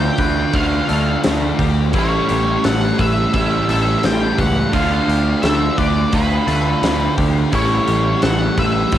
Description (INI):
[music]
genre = rock, shoegaze and dream pop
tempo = 86 BPM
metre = 4/4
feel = straight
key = A mixolydian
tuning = A4 = 440 Hz
[part]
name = octave-fuzz lead guitar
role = melody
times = 0.0-9.0 s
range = B4 to G5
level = -22 LUFS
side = left 1 dB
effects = distortion, analog delay
[part]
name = twangy electric guitar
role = arpeggios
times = 0.0-9.0 s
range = E4 to B4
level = -30 LUFS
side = left 7 dB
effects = wide subtle chorus, cassette tape, analog delay
[part]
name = raw garage guitar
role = riff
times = 0.0-9.0 s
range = A2 to F4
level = -20 LUFS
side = right 7 dB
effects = overdrive, reverse reverb, cassette tape
[part]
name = thick fuzz guitar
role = riff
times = 0.0-9.0 s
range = A2 to D4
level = -21 LUFS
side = left 7 dB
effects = distortion, ensemble chorus, cassette tape
[part]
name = growling picked electric bass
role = bass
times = 0.0-9.0 s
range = A1 to D2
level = -21 LUFS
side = equal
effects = overdrive
[part]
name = huge arena drum kit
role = drums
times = 0.2-9.0 s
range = hi-hat, kick drum, snare drum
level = -22 LUFS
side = equal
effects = cassette tape
[sound]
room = light reverb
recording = home recording on cassette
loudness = -14 LUFS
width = side -11 dB against mid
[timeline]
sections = 0.0-9.0 A section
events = none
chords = 0.0 Dm6; 1.9 A7; 4.7 Dm6; 7.5 A7